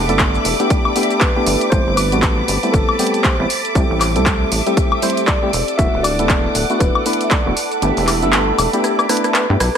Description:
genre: deep house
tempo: 118 BPM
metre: 4/4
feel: swing 59% on 16ths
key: unclear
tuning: A4 = 442 Hz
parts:
  - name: soft string machine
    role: sustained chords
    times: 0.0-9.8 s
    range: A4 to D6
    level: -25 LUFS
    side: equal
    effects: phaser, ensemble chorus, sidechain pumping
  - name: percussive organ stab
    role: stabs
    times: 0.0-9.6 s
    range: G3 to C5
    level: -20 LUFS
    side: equal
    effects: chorus, sidechain pumping, digital delay
  - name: rubbery square bass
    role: bass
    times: 0.0-9.7 s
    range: D1 to G2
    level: -20 LUFS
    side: equal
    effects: sidechain pumping
  - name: rich studio violin section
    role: texture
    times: 0.0-9.8 s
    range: D6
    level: -26 LUFS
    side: equal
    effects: sidechain pumping
  - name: warbly tape-like pad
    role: texture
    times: 0.0-9.8 s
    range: C4 to B5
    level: -26 LUFS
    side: right 1 dB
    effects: chorus, built-in reverb, phaser, sidechain pumping
  - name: house drum kit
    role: drums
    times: 0.1-9.8 s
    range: handclaps, hi-hat, rim click, shaker, woodblock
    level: -20 LUFS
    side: left 1 dB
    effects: overdrive
  - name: electronic kick drum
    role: drums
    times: 0.2-7.4 s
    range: none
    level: -17 LUFS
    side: equal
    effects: overdrive
  - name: mellow tine electric piano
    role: melody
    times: 1.2-9.8 s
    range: A4 to E5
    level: -25 LUFS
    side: equal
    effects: ping-pong delay
room: light reverb, digital ambience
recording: vinyl crackle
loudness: -14 LUFS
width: side -8 dB against mid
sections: 0.0-9.8 A section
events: kick drops out 7.8-9.8; drum fill 8.8-9.8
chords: 0.0 G69; 1.7 Am9; 3.8 C6; 5.5 E9sus4; 7.6 G69

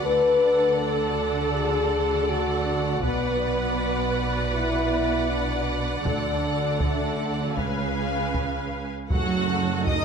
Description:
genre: cinematic, epic orchestral film score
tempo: 80 BPM (dotted quarters)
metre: 12/8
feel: straight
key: unclear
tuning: A4 = 438 Hz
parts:
  - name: warm symphonic violin section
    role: melody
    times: 0.0-10.0 s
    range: F#5 to D#6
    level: -35 LUFS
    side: left 3 dB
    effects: none
  - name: rich symphonic violin section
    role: second line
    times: 0.0-10.0 s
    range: F#4 to E#5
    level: -31 LUFS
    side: left 1 dB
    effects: none
  - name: mellow French horn section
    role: sustained chords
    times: 0.0-10.0 s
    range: A3 to B4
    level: -26 LUFS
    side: left 3 dB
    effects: none
  - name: warm symphonic viola section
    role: accompaniment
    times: 0.1-10.0 s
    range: C#4 to B4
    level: -31 LUFS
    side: right 2 dB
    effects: none
  - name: dark symphonic cello section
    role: bass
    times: 0.1-10.0 s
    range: B2 to D#4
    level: -30 LUFS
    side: right 5 dB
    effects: none
  - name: rich symphonic double bass section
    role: bass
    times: 0.1-10.0 s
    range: B1 to F#2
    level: -31 LUFS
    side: right 4 dB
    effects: none
  - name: taiko ensemble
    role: drums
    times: 3.0-10.0 s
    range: none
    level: -29 LUFS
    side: equal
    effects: none
  - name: dark trombone section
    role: sustained chords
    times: 9.1-10.0 s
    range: F#3 to A3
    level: -34 LUFS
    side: right 6 dB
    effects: none
  - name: mellow tuba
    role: bass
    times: 9.1-10.0 s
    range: F#1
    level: -32 LUFS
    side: right 5 dB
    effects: none
  - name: timpani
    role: percussion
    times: 9.1-9.8 s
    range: F#2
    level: -36 LUFS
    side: left 1 dB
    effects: none
room: moderate scoring stage reverb, RT60 1.5 s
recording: none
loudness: -22 LUFS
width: side -6 dB against mid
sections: 0.0-9.1 A section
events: none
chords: 0.1 D; 3.0 Bm; 6.1 D; 7.6 C#7; 9.1 F#m

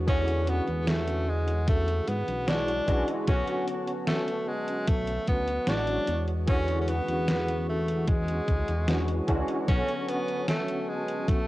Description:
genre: vaporwave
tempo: 75 BPM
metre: 4/4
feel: straight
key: unclear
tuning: A4 = 440 Hz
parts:
  - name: barky tine electric piano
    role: accompaniment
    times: 0.0-11.5 s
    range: D3 to C#5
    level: -31 LUFS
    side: equal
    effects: ensemble chorus, cassette tape, tape echo, plate reverb
  - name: warbly tape-like pad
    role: sustained chords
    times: 0.0-11.5 s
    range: G#4 to C#6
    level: -42 LUFS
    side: left 1 dB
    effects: none
  - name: chorused synth bass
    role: bass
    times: 0.0-11.5 s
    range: A1 to G#2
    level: -30 LUFS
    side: equal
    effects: none
  - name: breathy tenor saxophone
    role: melody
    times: 0.1-11.5 s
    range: G#3 to D4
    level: -31 LUFS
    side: equal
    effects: cassette tape, tape echo, plate reverb
  - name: detuned 8-bit digital drum machine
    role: drums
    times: 0.1-11.4 s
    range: hi-hat, snare drum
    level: -32 LUFS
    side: equal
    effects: vintage 12-bit sampler grit, cassette tape
  - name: electronic kick drum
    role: drums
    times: 0.1-11.4 s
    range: none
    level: -26 LUFS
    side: equal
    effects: vintage 12-bit sampler grit, cassette tape
room: moderate studio ambience, RT60 0.5 s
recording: home recording on cassette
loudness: -25 LUFS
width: side -17 dB against mid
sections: 0.0-11.5 A section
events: none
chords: 0.0 E13; 3.3 Bm9; 6.1 E13; 9.7 Bm9

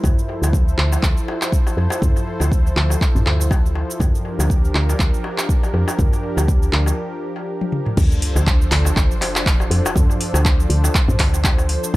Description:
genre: afro house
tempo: 121 BPM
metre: 4/4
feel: swing 56% on 16ths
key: D minor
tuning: A4 = 440 Hz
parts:
  - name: warm analog pad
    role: sustained chords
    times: 0.0-12.0 s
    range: F3 to C5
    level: -26 LUFS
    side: equal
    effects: chorus, sidechain pumping
  - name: woody FM bass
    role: bass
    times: 0.0-12.0 s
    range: A1 to F2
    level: -18 LUFS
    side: equal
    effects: sidechain pumping
  - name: afro-pop drum kit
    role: drums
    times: 0.0-11.9 s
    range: crash cymbal, handclaps, hi-hat, shaker, toms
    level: -24 LUFS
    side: equal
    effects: studio ambience
  - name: electronic kick drum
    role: drums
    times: 0.0-12.0 s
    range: none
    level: -17 LUFS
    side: equal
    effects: studio ambience
  - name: darbuka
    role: percussion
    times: 0.0-12.0 s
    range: none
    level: -27 LUFS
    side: left 2 dB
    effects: tape echo
  - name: sub drop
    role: sound effects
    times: 8.0-10.0 s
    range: none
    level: -25 LUFS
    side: equal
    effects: none
room: little or no reverb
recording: echo-heavy mix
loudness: -16 LUFS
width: side -18 dB against mid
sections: 0.0-8.0 A section; 8.0-12.0 B section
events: break 7.0-8.0; drum fill 7.6-8.0; drop 8.0-12.0; impact 8.0-10.0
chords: 0.0 Fmaj7/D; 4.0 Gm7/D; 8.0 Dm7

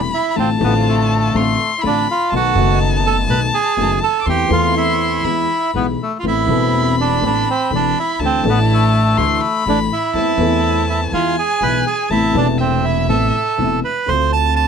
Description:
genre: tango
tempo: 123 BPM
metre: 4/4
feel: rubato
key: A minor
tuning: A4 = 440 Hz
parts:
  - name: dark violin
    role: second line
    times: 0.0-13.8 s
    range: E5 to D6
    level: -22 LUFS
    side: left 5 dB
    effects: none
  - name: dark upright piano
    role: accompaniment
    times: 0.0-14.7 s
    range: E1 to A4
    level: -20 LUFS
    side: left 3 dB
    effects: none
  - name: dark studio string section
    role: stabs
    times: 0.0-14.7 s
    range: G#3 to F4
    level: -27 LUFS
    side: left 2 dB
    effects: none
  - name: upright bass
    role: bass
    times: 0.0-14.7 s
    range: E1 to E2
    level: -20 LUFS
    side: right 1 dB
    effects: none
  - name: bandoneon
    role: melody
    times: 0.1-14.7 s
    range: A3 to A5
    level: -18 LUFS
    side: right 4 dB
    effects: none
room: light reverb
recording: none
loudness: -14 LUFS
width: side -7 dB against mid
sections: 0.0-14.1 A section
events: none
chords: 0.4 Dm7/A; 2.3 B7; 4.3 Am/E; 5.2 E; 6.2 Amadd9; 8.2 Dsus2; 10.2 Am/E; 11.1 E; 12.1 Amadd9; 14.1 Dm7

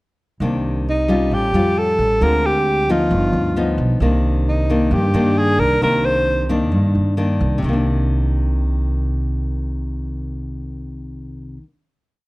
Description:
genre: bossa nova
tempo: 133 BPM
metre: 4/4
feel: straight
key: C minor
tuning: A4 = 440 Hz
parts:
  - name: nylon-string guitar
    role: accompaniment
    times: 0.4-11.7 s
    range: G2 to F4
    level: -21 LUFS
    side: left 2 dB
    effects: none
  - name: upright bass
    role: bass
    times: 0.4-11.6 s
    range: G1 to G2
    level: -20 LUFS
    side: right 1 dB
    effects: none
  - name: breathy alto saxophone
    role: melody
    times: 0.9-6.5 s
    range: Eb4 to C5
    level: -18 LUFS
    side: right 1 dB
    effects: slapback echo
room: light reverb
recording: dry, close 1970s-style studio recording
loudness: -16 LUFS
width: side -21 dB against mid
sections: 0.4-7.6 A section; 7.6-11.2 final chord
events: none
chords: 0.4 Cm9; 1.3 Aaug7; 2.2 Dm7b5; 3.1 G7b13; 4.0 Cm9

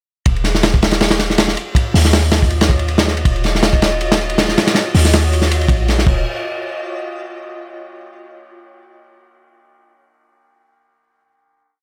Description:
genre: drum and bass, jungle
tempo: 160 BPM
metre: 4/4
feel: swing 55% on 16ths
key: Eb minor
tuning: A4 = 440 Hz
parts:
  - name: granular cloud pad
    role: sustained chords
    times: 1.6-6.2 s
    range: F4 to Eb5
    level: -27 LUFS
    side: equal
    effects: built-in reverb
  - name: warm 808-style bass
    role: bass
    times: 0.3-6.2 s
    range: Eb1 to Eb2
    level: -19 LUFS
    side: equal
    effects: none
  - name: crunchy breakbeat drum kit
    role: drums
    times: 0.3-6.2 s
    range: crash cymbal, hi-hat, kick drum, ride cymbal, snare drum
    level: -17 LUFS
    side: equal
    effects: none
room: studio ambience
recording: none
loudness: -15 LUFS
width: mono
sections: 0.3-6.3 drop; 6.3-7.8 final hit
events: drop 0.3-6.3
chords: 0.3 Ebm9; 6.3 N.C.

